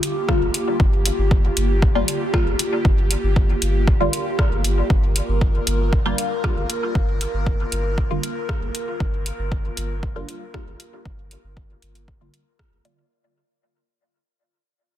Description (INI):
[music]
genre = dub techno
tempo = 117 BPM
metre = 4/4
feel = straight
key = G minor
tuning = A4 = 440 Hz
[part]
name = airy breathy pad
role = sustained chords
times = 0.0-13.1 s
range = Bb3 to Bb4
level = -27 LUFS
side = equal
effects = chorus, sidechain pumping
[part]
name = filtered dub chord stab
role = stabs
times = 0.0-13.0 s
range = D3 to F4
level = -26 LUFS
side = left 1 dB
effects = phaser, vintage 12-bit sampler grit, dub echo
[part]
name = deep house drum kit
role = drums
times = 0.0-13.0 s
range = hi-hat, rim click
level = -26 LUFS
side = equal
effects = overdrive, dub echo
[part]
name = electronic kick drum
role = drums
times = 0.3-12.7 s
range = none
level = -20 LUFS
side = equal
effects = overdrive
[part]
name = warm sub bass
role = bass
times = 0.4-12.8 s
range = G1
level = -23 LUFS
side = equal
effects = sidechain pumping
[sound]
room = little or no reverb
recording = dense, heavily limited modern master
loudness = -18 LUFS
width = side -12 dB against mid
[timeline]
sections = 0.0-13.1 A section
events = fade-out 4.9-13.1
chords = 0.0 Gm7